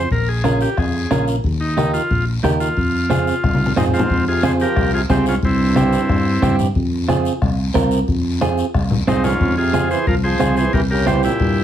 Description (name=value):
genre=latin, cumbia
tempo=181 BPM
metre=4/4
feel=straight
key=F minor, F harmonic minor from 4.1 s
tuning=A4 = 440 Hz
part: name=combo organ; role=melody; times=0.0-6.6, 9.1-11.6 s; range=C4 to C5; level=-21 LUFS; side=left 1 dB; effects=none
part: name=fingered electric bass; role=bass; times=0.0-11.6 s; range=Bb1 to G2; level=-20 LUFS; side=equal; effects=none
part: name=bombo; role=percussion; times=0.1-11.6 s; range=none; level=-23 LUFS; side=left 2 dB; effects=none
part: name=congas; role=percussion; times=0.1-11.6 s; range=none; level=-23 LUFS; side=left 2 dB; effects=none
part: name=guiro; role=percussion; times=0.1-11.6 s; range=none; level=-35 LUFS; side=left 6 dB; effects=none
part: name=clean electric guitar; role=accompaniment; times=0.4-11.3 s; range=C4 to Bb4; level=-20 LUFS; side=right 4 dB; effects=none
part: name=brilliant trombone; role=second line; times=3.8-6.6, 9.1-11.6 s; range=G2 to F3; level=-25 LUFS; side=right 4 dB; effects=none
room=moderate studio ambience, RT60 0.5 s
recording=heard from further back in the room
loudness=-15 LUFS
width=side -10 dB against mid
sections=0.0-4.1 A section; 4.1-11.6 B section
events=drum fill 3.4-4.1, 8.4-9.4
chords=0.1 Bbm; 1.4 Eb; 2.8 Fm; 5.4 C; 6.8 Fm; 10.7 C7